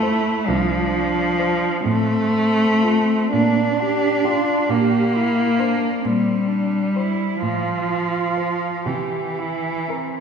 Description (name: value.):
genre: classical, lyrical piece for cello ensemble.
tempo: 38-44 BPM (dotted quarters).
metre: 6/8.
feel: rubato.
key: F major.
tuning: A4 = 440 Hz.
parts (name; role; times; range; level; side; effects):
muted cello; melody; 0.0-10.2 s; F4 to C5; -32 LUFS; left 7 dB; none.
muted cello; second line; 0.0-10.2 s; Bb3 to G4; -25 LUFS; right 7 dB; none.
muted cello; accompaniment; 0.0-10.2 s; E3 to D4; -19 LUFS; left 1 dB; none.
muted cello; bass; 0.0-10.2 s; C2 to C3; -25 LUFS; right 2 dB; none.
room: wet scoring stage reverb, RT60 2.0 s.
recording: heard from further back in the room.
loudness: -18 LUFS.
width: side -6 dB against mid.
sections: 0.0-10.2 A section.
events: none.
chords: 0.0 F; 1.8 F/A; 3.3 Gm/Bb; 4.7 C5/Bb; 7.4 F/A; 8.9 C7.